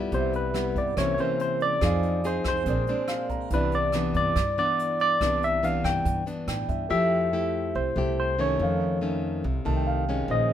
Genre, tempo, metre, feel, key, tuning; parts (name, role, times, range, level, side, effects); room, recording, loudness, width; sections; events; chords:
bossa nova; 142 BPM; 4/4; straight; C major; A4 = 440 Hz
nylon-string guitar; accompaniment; 0.0-10.5 s; F2 to Ab4; -29 LUFS; left 3 dB
warm concert grand piano; accompaniment; 0.0-10.5 s; C4 to Bb5; -34 LUFS; right 3 dB
barky tine electric piano; melody; 0.1-10.5 s; B4 to G5; -26 LUFS; right 1 dB; medium stereo tremolo
upright bass; bass; 0.1-10.5 s; Bb1 to A2; -30 LUFS; right 1 dB
jazz brush drum kit; drums; 0.1-6.8 s; hi-hat, kick drum, rim click; -33 LUFS; equal
light reverb; minimal, uncompressed stereo recording; -23 LUFS; side -10 dB against mid
0.0-6.9 A section; 6.9-10.5 B section
grand piano fill 2.9-3.5, 6.3-6.9, 9.4-10.3
0.1 Cmaj7; 1.0 C7b9; 1.8 Fm7; 2.7 Bb9; 3.5 Cmaj9; 6.9 Fmaj9; 8.6 F7b13